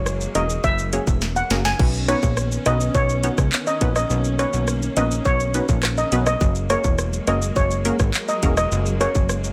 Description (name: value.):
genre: dancehall.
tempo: 104 BPM.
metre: 4/4.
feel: straight.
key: B major.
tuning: A4 = 440 Hz.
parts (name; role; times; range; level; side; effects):
warm studio string section; sustained chords; 0.0-9.5 s; D#3 to C#4; -32 LUFS; equal; sidechain pumping.
plucky analog bass; bass; 0.0-9.5 s; E1 to C#2; -25 LUFS; equal; none.
island pop drum kit; drums; 0.1-9.5 s; crash cymbal, handclaps, hi-hat, kick drum, rim click, shaker, snare drum; -25 LUFS; equal; none.
steel pan; melody; 0.4-9.1 s; C#5 to G#5; -26 LUFS; equal; digital delay.
punchy chord stab; accompaniment; 0.4-9.1 s; A#3 to C#5; -28 LUFS; equal; chorus.
room: little or no reverb.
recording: none.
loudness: -20 LUFS.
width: mono.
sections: 0.0-9.5 A section.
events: drum fill 1.2-1.8.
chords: 0.0 F#add9; 1.8 Badd9; 6.4 F#add9.